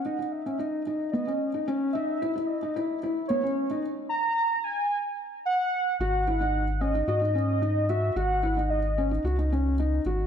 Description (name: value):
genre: piano and strings electronica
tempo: 111 BPM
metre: 4/4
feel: straight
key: unclear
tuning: A4 = 435 Hz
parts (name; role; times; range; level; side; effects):
- warm velvety synth lead; melody; 0.0-9.2 s; C#5 to A#5; -28 LUFS; right 1 dB; chorus, digital delay
- felt-muted upright piano; riff; 0.1-10.3 s; B3 to F#4; -28 LUFS; left 1 dB; digital delay
- warm sub bass; bass; 6.0-10.3 s; G#1 to G#2; -27 LUFS; equal; none
room: moderate recital hall reverb, RT60 1.5 s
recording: dark, warm production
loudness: -25 LUFS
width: side -8 dB against mid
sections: 0.0-6.0 A section; 6.0-10.3 B section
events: build-up 0.0-6.0; filter sweep on soft synth lead 0.0-6.0; drop 6.0-10.3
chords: 0.0 Badd9 (rootless); 1.7 C#m; 3.8 N.C.; 6.0 G#5